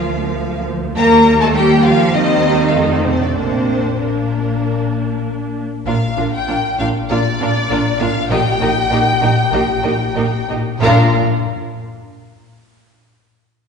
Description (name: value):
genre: quick classical-period movement for string orchestra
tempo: 97 BPM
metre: 4/4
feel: uneven beats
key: Bb major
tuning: A4 = 435 Hz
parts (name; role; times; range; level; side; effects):
- rich studio violin section; melody; 0.0-11.2 s; Bb4 to Bb5; -19 LUFS; left 4 dB; none
- rich symphonic violin section; second line; 0.0-11.2 s; Bb3 to F5; -21 LUFS; left 1 dB; none
- rich symphonic viola section; accompaniment; 0.0-11.2 s; F3 to G4; -20 LUFS; right 2 dB; none
- clear studio cello section; bass; 0.0-11.2 s; Bb2 to Bb3; -21 LUFS; right 2 dB; none
- warm symphonic double bass section; bass; 0.0-11.2 s; Bb1 to F2; -20 LUFS; left 1 dB; none
room: wet concert hall reverb, RT60 1.9 s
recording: heard from further back in the room, nothing above 10.7 kHz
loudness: -13 LUFS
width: side -6 dB against mid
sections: 0.0-5.9 A section; 5.9-10.8 B section; 10.8-13.4 C section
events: slowing down 4.6-10.8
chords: 0.0 Bb/D; 1.0 Eb; 2.2 Cm/Eb; 2.8 F7; 3.4 Bb; 8.3 Eb/Bb; 10.8 Bb